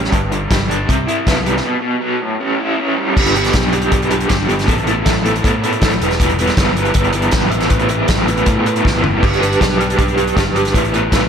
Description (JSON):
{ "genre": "indie rock", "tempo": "158 BPM", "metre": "4/4", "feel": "straight", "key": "unclear", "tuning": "A4 = 441 Hz", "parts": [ { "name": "raw garage guitar", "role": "riff", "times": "0.0-11.3 s", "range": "G2 to B4", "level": "-15 LUFS", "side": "right 1 dB", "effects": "overdrive, tremolo, slapback echo" }, { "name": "picked electric bass", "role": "bass", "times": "0.0-11.3 s", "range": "E1 to A2", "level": "-21 LUFS", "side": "equal", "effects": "none" }, { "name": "vintage drum kit", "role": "drums", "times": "0.0-11.2 s", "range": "crash cymbal, hi-hat, kick drum, snare drum, toms", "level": "-17 LUFS", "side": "equal", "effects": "none" } ], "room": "moderate lush hall reverb, RT60 1.9 s", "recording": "big arena sound", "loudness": "-13 LUFS", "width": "side -7 dB against mid", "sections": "0.0-3.2 A section; 3.2-11.3 B section", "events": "break 1.6-3.2; drum fill 8.8-9.2", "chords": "0.1 G5; 0.9 Cmaj7; 1.6 B5; 2.2 A7; 3.2 G; 4.7 Asus2; 6.0 Em; 7.5 Asus2; 9.2 G; 10.7 Asus2" }